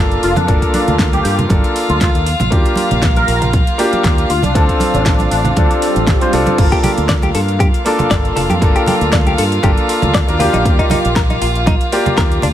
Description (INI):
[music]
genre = nu-disco, nu disco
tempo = 118 BPM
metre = 4/4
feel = swing 54% on 16ths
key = G minor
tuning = A4 = 440 Hz
[part]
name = clear baby grand piano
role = accompaniment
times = 0.0-12.4 s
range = Bb3 to D5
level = -18 LUFS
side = equal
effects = sidechain pumping, digital delay
[part]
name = warm chamber string section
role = sustained chords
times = 0.0-12.5 s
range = F4 to F5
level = -21 LUFS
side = equal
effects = sidechain pumping
[part]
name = fingered electric bass with an envelope filter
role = bass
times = 0.0-12.5 s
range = F1 to G2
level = -18 LUFS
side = equal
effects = none
[part]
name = pop drum kit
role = drums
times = 0.1-12.5 s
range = crash cymbal, hi-hat, snare drum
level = -22 LUFS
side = equal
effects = none
[part]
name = wide unison lead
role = melody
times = 0.2-6.0 s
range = D4 to Bb4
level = -20 LUFS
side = left 1 dB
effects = ensemble chorus, ping-pong delay
[part]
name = congas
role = percussion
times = 0.4-12.5 s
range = none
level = -22 LUFS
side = right 3 dB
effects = none
[part]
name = electronic kick drum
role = drums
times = 0.5-12.3 s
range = none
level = -15 LUFS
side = equal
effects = none
[part]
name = swell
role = sound effects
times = 5.7-6.6 s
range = none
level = -24 LUFS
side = equal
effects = none
[part]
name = direct-recorded clean electric guitar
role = riff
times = 6.7-12.5 s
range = D4 to D5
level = -21 LUFS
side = left 3 dB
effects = lush chorus, digital delay
[sound]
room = light reverb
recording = none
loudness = -11 LUFS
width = side -11 dB against mid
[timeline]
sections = 0.0-6.6 A section; 6.6-12.5 B section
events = swell 5.7-6.6; drop 6.6-12.5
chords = 0.0 Gm7; 2.3 Ebmaj7; 4.3 Dm7; 6.6 Gm7; 10.4 Ebmaj7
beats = | 0.48 0.99 1.50 2.01 | 2.52 3.03 3.54 4.04 | 4.55 5.06 5.57 6.08 | 6.59 7.09 7.60 8.11 | 8.62 9.13 9.64 10.14 | 10.65 11.16 11.67 12.18